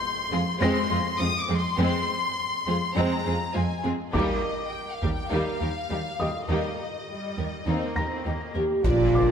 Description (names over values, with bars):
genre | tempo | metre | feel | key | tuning
cinematic, hybrid orchestral and electronic film score | 102 BPM | 4/4 | straight | unclear | A4 = 440 Hz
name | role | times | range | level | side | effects
warm symphonic violin section | melody | 0.0-8.5 s | Eb5 to Eb6 | -30 LUFS | left 4 dB | none
felt-muted upright piano | texture | 0.0-9.3 s | Bb4 to Bb6 | -36 LUFS | left 1 dB | ping-pong delay
warm symphonic violin section | second line | 0.3-9.3 s | Ab3 to D5 | -33 LUFS | left 3 dB | none
rich symphonic viola section | accompaniment | 0.3-9.3 s | G3 to G4 | -32 LUFS | right 2 dB | none
clear symphonic cello section | bass | 0.3-9.3 s | Eb2 to Bb2 | -28 LUFS | right 2 dB | none
taiko ensemble | drums | 4.1-5.3, 8.8-9.3 s | none | -32 LUFS | equal | none
mellow French horn section | sustained chords | 8.6-9.3 s | F4 to G4 | -22 LUFS | equal | none
warm symphonic double bass section | bass | 8.8-9.3 s | Bb1 | -27 LUFS | right 6 dB | none
impact | sound effects | 8.8-9.3 s | none | -29 LUFS | equal | none
warm sub bass | bass | 8.9-9.3 s | Bb1 | -29 LUFS | equal | none
room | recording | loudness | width
moderate scoring stage reverb, RT60 2.1 s | none | -24 LUFS | side -7 dB against mid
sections
0.0-8.8 A section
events
impact 8.8-9.3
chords
0.0 Fm; 4.1 Eb